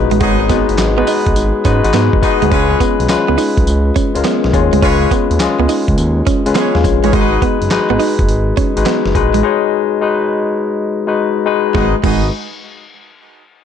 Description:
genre	R&B, new jack swing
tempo	104 BPM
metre	4/4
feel	swing 67% on 16ths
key	G# dorian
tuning	A4 = 440 Hz
part	tine electric piano	accompaniment	0.0-12.3 s	G#3 to G#5	-15 LUFS	moving between left 11 dB and left 2 dB	auto-pan
part	smooth synth bass	bass	0.0-12.3 s	F#1 to G#2	-16 LUFS	right 1 dB	none
part	direct-recorded clean electric guitar	riff	0.1-12.2 s	G#3 to D#4	-20 LUFS	right 10 dB	wide subtle chorus
part	dusty soul sampler-style drum kit	drums	0.1-12.2 s	crash cymbal, handclaps, hi-hat, kick drum, snare drum, tambourine	-18 LUFS	right 1 dB	none
part	warm horn section	stabs	0.2-7.4, 11.7-12.3 s	C#4 to D#5	-23 LUFS	right 4 dB	none
room	light reverb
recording	dark, warm production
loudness	-11 LUFS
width	side -8 dB against mid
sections	0.0-2.5 A section; 2.5-11.7 B section; 11.7-13.6 C section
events	break 9.4-11.7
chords	0.0 G#m7; 2.5 C#7; 7.1 G#m7

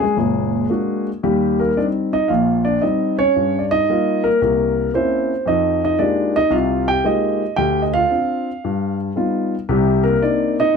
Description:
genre	jazz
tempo	114 BPM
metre	4/4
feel	swing 68% on 8ths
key	C minor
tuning	A4 = 440 Hz
part	dark grand piano	solo	0.0-10.8 s	F#1 to G5	-16 LUFS	equal	none
room	moderate club reverb, RT60 0.5 s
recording	none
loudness	-16 LUFS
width	side -5 dB against mid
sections	0.0-10.8 A section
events	none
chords	0.0 Bb7b13; 1.2 Eb6; 3.3 Gm7b5; 4.4 C7b9; 5.5 Fm11; 7.6 Dmadd11; 8.6 Gaug7; 9.7 Cm9

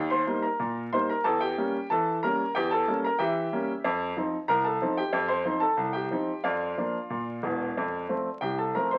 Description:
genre	ragtime piano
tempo	92 BPM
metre	2/4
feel	straight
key	unclear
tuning	A4 = 444 Hz
part	clear upright piano	solo	0.0-9.0 s	E1 to C6	-28 LUFS	equal	none
room	moderate studio reverb, RT60 0.7 s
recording	very old 78 rpm record, vinyl crackle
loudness	-28 LUFS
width	mono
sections	0.0-9.0 A section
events	none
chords	0.0 Eb; 1.2 Edim7; 3.8 F7; 6.4 Bb/F; 7.8 F

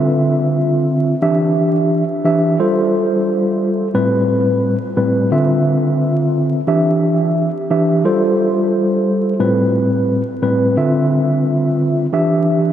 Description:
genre	hip hop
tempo	88 BPM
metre	4/4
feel	swing 62% on 16ths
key	A minor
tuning	A4 = 440 Hz
part	mellow tine electric piano	solo	0.0-12.7 s	A2 to E5	-13 LUFS	equal	medium stereo tremolo, cassette tape, high-pass filter, low-pass filter, analog delay
room	wet huge ambient reverb, RT60 4.1 s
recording	dreamy mix soaked in reverb, vinyl crackle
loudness	-13 LUFS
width	side -10 dB against mid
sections	0.0-9.4 A section; 9.4-12.7 B section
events	none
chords	0.0 Dm9; 1.2 Em7; 2.6 G9sus4; 4.0 Am9; 5.3 Dm9; 6.7 Em7; 8.0 G9sus4; 9.4 Am9; 10.8 Dm9; 12.1 Em7

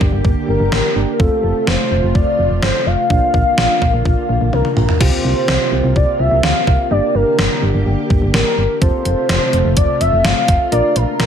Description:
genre	synth-pop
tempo	126 BPM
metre	4/4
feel	straight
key	F major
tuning	A4 = 441 Hz
part	soft electric-piano-like synth keys	accompaniment	0.0-11.3 s	A3 to Bb4	-24 LUFS	right 3 dB	chorus
part	soft string machine	sustained chords	0.0-11.3 s	C3 to G4	-23 LUFS	left 1 dB	ensemble chorus
part	solid FM bass	bass	0.0-11.3 s	F1 to D2	-18 LUFS	equal	none
part	gated 80s digital drum machine	drums	0.0-11.3 s	crash cymbal, hi-hat, kick drum, snare drum, toms	-17 LUFS	equal	gated reverb, gated reverb snare
part	warm velvety synth lead	melody	0.5-11.3 s	A4 to F5	-18 LUFS	left 1 dB	chorus, digital delay
room	light reverb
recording	none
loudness	-13 LUFS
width	side -8 dB against mid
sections	0.0-5.0 A section; 5.0-11.3 B section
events	drum fill 4.5-5.0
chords	0.0 Gm; 1.2 F; 3.1 Bb; 5.0 C7sus4; 6.9 Gm; 8.8 F; 10.7 Bb

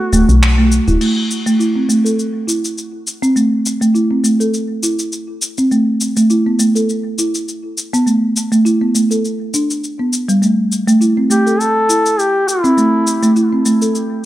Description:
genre	organic downtempo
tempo	102 BPM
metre	4/4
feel	swing 55% on 16ths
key	A dorian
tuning	A4 = 441 Hz
part	warm duduk	melody	0.0-0.4, 11.3-13.4 s	E4 to A4	-17 LUFS	equal	vintage 12-bit sampler grit, analog delay
part	folk marimba with soft mallets	arpeggios	0.1-13.9 s	G3 to A4	-14 LUFS	right 1 dB	low-pass filter, analog delay
part	woody FM bass	bass	0.1-1.0 s	D1 to B1	-12 LUFS	equal	none
part	deep house drum kit	drums	0.1-14.1 s	cabasa, crash cymbal, finger snaps	-21 LUFS	left 2 dB	overdrive
room	little or no reverb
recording	dry, gritty hardware recording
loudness	-12 LUFS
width	side -14 dB against mid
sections	0.0-1.0 A section; 1.0-14.3 B section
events	band accent 0.4; filter sweep on marimba 1.0-14.3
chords	0.0 Gmaj7 (rootless); 1.0 Am; 5.7 N.C.; 10.4 Am

